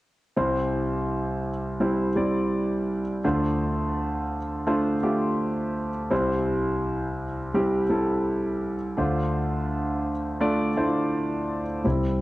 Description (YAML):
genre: piano-driven pop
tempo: 84 BPM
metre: 4/4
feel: straight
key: C major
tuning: A4 = 440 Hz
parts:
  - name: warm concert grand piano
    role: accompaniment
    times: 0.4-12.2 s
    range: C2 to D5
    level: -23 LUFS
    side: equal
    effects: cassette tape
  - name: rich double bass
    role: bass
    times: 11.9-12.2 s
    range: C2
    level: -24 LUFS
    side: equal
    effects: none
room: wet spring reverb, RT60 1.6 s, small room reverb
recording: home recording on cassette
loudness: -23 LUFS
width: side -17 dB against mid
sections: 0.4-11.8 A section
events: none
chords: 0.4 C; 3.2 Dm7; 6.1 C; 9.0 Dm7